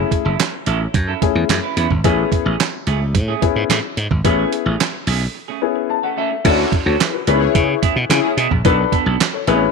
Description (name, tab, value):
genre	early-eighties boogie funk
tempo	109 BPM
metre	4/4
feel	straight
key	unclear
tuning	A4 = 441 Hz
part	warm baby grand piano	accompaniment	0.0-9.7 s	A3 to A5	-20 LUFS	left 14 dB	none
part	semi-hollow electric guitar	riff	0.0-9.7 s	A3 to B4	-24 LUFS	right 12 dB	lush chorus
part	slap bass	bass	0.0-9.7 s	F#1 to C#3	-18 LUFS	equal	none
part	dusty soul sampler-style drum kit	drums	0.1-9.6 s	crash cymbal, handclaps, hi-hat, kick drum, snare drum	-19 LUFS	right 5 dB	none
part	mellow synth brass	second line	6.4-8.3 s	C#4 to D5	-22 LUFS	left 13 dB	chorus
room	light reverb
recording	1960s-style stereo with parts hard left and right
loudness	-15 LUFS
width	side -4 dB against mid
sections	0.0-6.4 A section; 6.4-9.7 B section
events	break 5.3-6.4; grand piano fill 5.6-6.4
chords	0.0 F#m7; 2.0 Amaj7; 6.4 Dmaj7; 7.3 C#m7; 8.6 Bm7